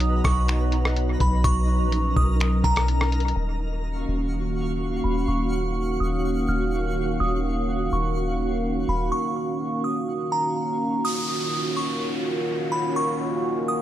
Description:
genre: hip hop, atmospheric cloud-rap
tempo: 125 BPM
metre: 4/4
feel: half-time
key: Eb minor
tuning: A4 = 440 Hz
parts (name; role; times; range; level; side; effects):
- glassy synth bell; melody; 0.0-13.8 s; A#5 to F6; -28 LUFS; right 1 dB; chorus, low-pass filter, analog delay
- dark analog pad; sustained chords; 0.0-13.8 s; Eb3 to F5; -26 LUFS; right 1 dB; chorus, sidechain pumping, low-pass filter
- soft 808-style bass; bass; 0.0-9.1 s; Eb1 to B1; -24 LUFS; equal; none
- lo-fi sampler-style drum kit; drums; 0.0-3.4 s; finger snaps, hi-hat, kick drum, rim click; -25 LUFS; equal; analog delay
- twinkling granular texture; texture; 0.0-11.0 s; D#4 to Db6; -35 LUFS; left 1 dB; built-in reverb
- downlifter; sound effects; 11.0-13.8 s; none; -31 LUFS; equal; none
room: little or no reverb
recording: echo-heavy mix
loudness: -22 LUFS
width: side -12 dB against mid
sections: 0.0-3.4 A section; 3.4-11.0 B section; 11.0-13.8 A section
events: filter sweep 3.4-11.0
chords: 0.0 Bmaj7; 3.4 Ebm9

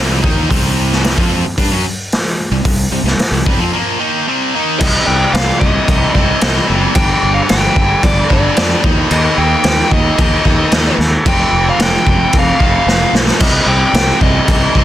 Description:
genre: hard rock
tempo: 112 BPM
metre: 4/4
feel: straight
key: C minor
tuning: A4 = 441 Hz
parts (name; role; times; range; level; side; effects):
- distorted electric guitar; riff; 0.0-14.8 s; F2 to F4; -17 LUFS; equal; overdrive
- fuzz fingered electric bass; bass; 0.0-14.8 s; F1 to G2; -17 LUFS; equal; overdrive
- raw garage drum kit; drums; 0.2-14.8 s; crash cymbal, hi-hat, kick drum, snare drum; -13 LUFS; equal; none
- biting lead guitar; melody; 4.8-14.8 s; D5 to G5; -17 LUFS; equal; overdrive, slapback echo
room: small room reverb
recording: dense, heavily limited modern master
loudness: -10 LUFS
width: side -12 dB against mid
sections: 0.0-4.8 A section; 4.8-14.8 B section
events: drum fill 12.9-13.4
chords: 0.0 Cm; 7.0 G5; 8.8 Eb; 11.3 F5; 13.4 Cm

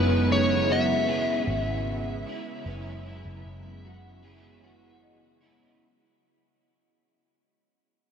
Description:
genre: dream pop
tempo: 76 BPM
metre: 4/4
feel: straight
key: unclear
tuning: A4 = 436 Hz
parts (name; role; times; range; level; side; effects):
- overdriven slide guitar; melody; 0.0-5.0 s; B4 to E5; -28 LUFS; left 2 dB; shimmer reverb, diffuse ambient delay
- overdriven semi-hollow guitar; accompaniment; 0.0-5.8 s; F#3 to C#5; -36 LUFS; right 3 dB; tremolo, ensemble chorus, shimmer reverb
- phased analog pad; sustained chords; 0.0-5.8 s; C#3 to E4; -29 LUFS; right 2 dB; phaser, chorus, shimmer reverb
- electric guitar at the edge of break-up; arpeggios; 0.0-5.8 s; C#4 to G#4; -36 LUFS; left 1 dB; ensemble chorus, shimmer reverb, diffuse ambient delay
- vintage muted picked electric bass; bass; 0.0-5.8 s; F#1 to G#1; -31 LUFS; equal; none
- small celesta; texture; 2.7-6.2 s; B4 to D#5; -53 LUFS; right 2 dB; none
room: wet huge ambient reverb, RT60 7.9 s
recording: dreamy mix soaked in reverb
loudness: -23 LUFS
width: side -7 dB against mid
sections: 0.0-5.8 A section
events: fade-out 0.0-5.8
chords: 0.0 C#m7/F#

